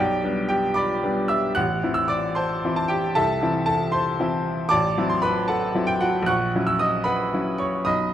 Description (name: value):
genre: classical, romantic character piece for solo piano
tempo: 76 BPM (dotted quarters)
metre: 6/8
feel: rubato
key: unclear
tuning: A4 = 440 Hz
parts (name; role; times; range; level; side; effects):
- bright baby grand piano; solo; 0.0-8.1 s; A1 to F#6; -20 LUFS; equal; none
room: moderate recital hall reverb, RT60 1.5 s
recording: dark, warm production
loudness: -20 LUFS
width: side -11 dB against mid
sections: 0.0-8.1 A section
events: none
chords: 0.0 G/B; 1.6 Am; 3.2 Am/C; 4.7 F#m7b5/A; 6.3 F#7/A#